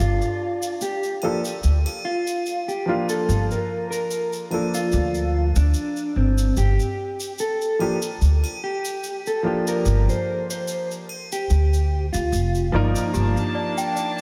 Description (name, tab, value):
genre	trip hop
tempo	73 BPM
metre	4/4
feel	swing 56% on 16ths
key	unclear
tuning	A4 = 440 Hz
part	mellow electric guitar	melody	0.0-13.1 s	C4 to C5	-28 LUFS	equal	harmonic tremolo, tape echo
part	upright bass	bass	0.0-13.3 s	F1 to D2	-22 LUFS	equal	none
part	tube shaker and triangle	percussion	0.2-14.2 s	none	-37 LUFS	equal	none
part	warm upright piano	accompaniment	1.2-14.2 s	F3 to D5	-29 LUFS	equal	harmonic tremolo, tape echo
part	rich chamber string section	sustained chords	13.1-14.2 s	Bb3 to A5	-30 LUFS	equal	none
part	small celesta	arpeggios	13.1-14.2 s	G4 to G5	-32 LUFS	equal	vintage 12-bit sampler grit, tape echo
room	moderate lush hall reverb, RT60 2.8 s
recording	dreamy mix soaked in reverb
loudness	-23 LUFS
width	mono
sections	0.0-14.2 A section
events	none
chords	0.0 Bbmaj7/G; 6.6 Gm7; 13.1 Bbmaj7/G